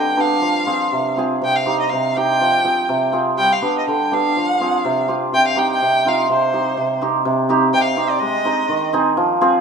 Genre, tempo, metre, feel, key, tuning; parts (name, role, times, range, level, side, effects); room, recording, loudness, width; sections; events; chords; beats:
klezmer; 123 BPM; 2/4; straight; C minor; A4 = 442 Hz
rich violin; melody; 0.0-8.9 s; C5 to G5; -20 LUFS; left 1 dB
hammered dulcimer; accompaniment; 0.0-9.6 s; C3 to Ab4; -17 LUFS; right 2 dB
moderate lush hall reverb, RT60 2.5 s; rough home demo mix; -15 LUFS; side -6 dB against mid
0.0-7.3 A section; 7.3-9.6 B section
speeding up 0.0-9.6
0.4 Fm; 1.4 Cm; 2.4 Fm; 3.4 G; 4.4 F5; 5.3 Cm; 8.2 Ab
| 0.42 0.92 | 1.41 1.90 | 2.40 2.89 | 3.38 3.87 | 4.35 4.84 | 5.33 5.81 | 6.29 6.78 | 7.26 7.74 | 8.21 8.69 | 9.17